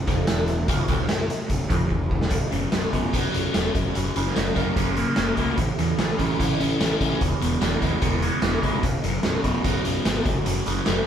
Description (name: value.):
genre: classic rock.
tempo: 147 BPM.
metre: 4/4.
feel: straight.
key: unclear.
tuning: A4 = 440 Hz.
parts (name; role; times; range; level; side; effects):
crunchy overdriven guitar; riff; 0.0-11.1 s; B1 to E4; -25 LUFS; right 1 dB; phaser.
fuzz picked electric bass; bass; 0.0-11.0 s; B0 to F#2; -28 LUFS; equal; overdrive.
raw garage drum kit; drums; 0.1-11.0 s; hi-hat, kick drum, snare drum; -24 LUFS; equal; none.
room: moderate stone room reverb, RT60 1.0 s.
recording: band playing live in one room.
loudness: -21 LUFS.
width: side -9 dB against mid.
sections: 0.0-2.3 A section; 2.3-11.1 B section.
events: drum fill 1.9-2.3.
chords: 0.0 Bdim; 2.3 B5; 3.7 F#; 5.6 A; 7.2 E; 8.8 B5; 10.3 F#5.